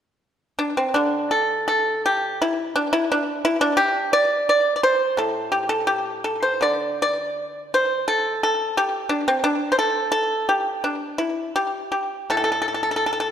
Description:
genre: chinese traditional, Chinese solo plucked strings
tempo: 80-89 BPM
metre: 2/4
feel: rubato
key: D shang mode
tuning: A4 = 440 Hz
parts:
  - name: pipa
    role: solo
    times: 0.6-13.3 s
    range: A2 to D5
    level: -19 LUFS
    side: equal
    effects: slapback echo
room: moderate scoring stage reverb, RT60 2.0 s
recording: dark, warm production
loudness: -19 LUFS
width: side -9 dB against mid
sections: 1.0-12.3 A section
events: none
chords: none

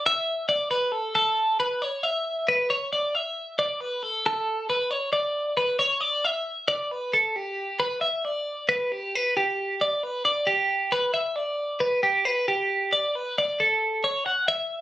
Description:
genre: rock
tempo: 270 BPM (eighths)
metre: 7/8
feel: straight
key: G lydian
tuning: A4 = 440 Hz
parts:
  - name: twelve-string electric guitar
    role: solo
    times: 0.0-14.8 s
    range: G4 to F#5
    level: -23 LUFS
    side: equal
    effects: none
room: light reverb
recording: recorded on a phone in the room, studio ambience, compression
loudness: -23 LUFS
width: side -14 dB against mid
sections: 0.0-7.4 A section; 7.4-14.8 B section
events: none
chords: none

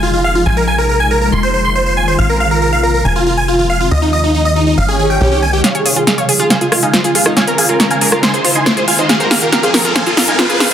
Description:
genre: uplifting trance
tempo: 139 BPM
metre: 4/4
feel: straight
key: F minor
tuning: A4 = 439 Hz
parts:
  - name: big supersaw lead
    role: melody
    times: 0.0-10.7 s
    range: Eb4 to C6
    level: -14 LUFS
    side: right 1 dB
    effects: low-pass filter, dub echo
  - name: shimmering ambient pad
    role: sustained chords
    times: 0.0-10.7 s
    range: Bb2 to G4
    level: -20 LUFS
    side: left 1 dB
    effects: chorus, built-in reverb, phaser
  - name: tight sequencer bass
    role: bass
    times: 0.0-5.6 s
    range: F1 to Eb2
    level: -16 LUFS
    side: equal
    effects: tube saturation
  - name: swell and riser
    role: sound effects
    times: 4.9-10.7 s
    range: none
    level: -21 LUFS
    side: equal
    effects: none
  - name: analog pluck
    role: arpeggios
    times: 5.6-10.7 s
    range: Eb4 to F5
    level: -19 LUFS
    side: right 2 dB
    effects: chorus, dub echo
  - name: big-room dance drum kit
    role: drums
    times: 5.6-10.7 s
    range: hi-hat, rim click, snare drum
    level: -13 LUFS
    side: equal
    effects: overdrive
room: moderate lush hall reverb, RT60 1.9 s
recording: dense, heavily limited modern master, high-pass filter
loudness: -10 LUFS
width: side -9 dB against mid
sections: 0.0-5.6 A section; 5.6-10.7 B section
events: swell 4.9-5.6; build-up 5.6-10.7; drum fill 5.6-10.7; riser 5.6-10.7; filter sweep on supersaw synth 5.6-10.7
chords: 0.5 Bbm7; 1.3 Fm7; 2.2 Bbsus2; 3.0 Fm7; 3.9 Eb; 4.8 Ab; 5.2 Cm7; 5.6 Db; 6.5 Fm7; 7.4 Bbm7; 8.2 Fm7; 9.1 Bbsus2; 10.0 Fm7

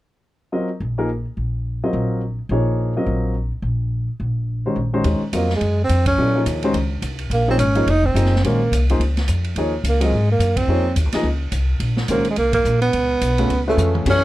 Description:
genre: modal jazz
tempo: 213 BPM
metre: 4/4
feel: swing 59% on 8ths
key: Eb dorian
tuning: A4 = 440 Hz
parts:
  - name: warm grand piano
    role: accompaniment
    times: 0.5-14.2 s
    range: Eb3 to Eb5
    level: -22 LUFS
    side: left 1 dB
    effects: none
  - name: upright bass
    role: bass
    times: 0.8-14.2 s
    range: F1 to Bb2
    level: -20 LUFS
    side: equal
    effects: none
  - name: swinging big-band drum kit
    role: drums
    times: 5.0-14.1 s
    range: crash cymbal, hi-hat, kick drum, ride cymbal, snare drum, toms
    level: -28 LUFS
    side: right 2 dB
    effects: none
  - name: breathy tenor saxophone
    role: melody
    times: 5.4-14.2 s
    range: Ab3 to Eb4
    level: -19 LUFS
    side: right 2 dB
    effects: none
room: little or no reverb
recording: dark, warm production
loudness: -17 LUFS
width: side -16 dB against mid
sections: 0.5-5.0 A section; 5.0-14.1 B section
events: band accent 6.0, 10.5, 12.5; drum fill 13.8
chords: 0.5 Ebm11; 9.6 Bbmadd9; 12.9 Db7b13

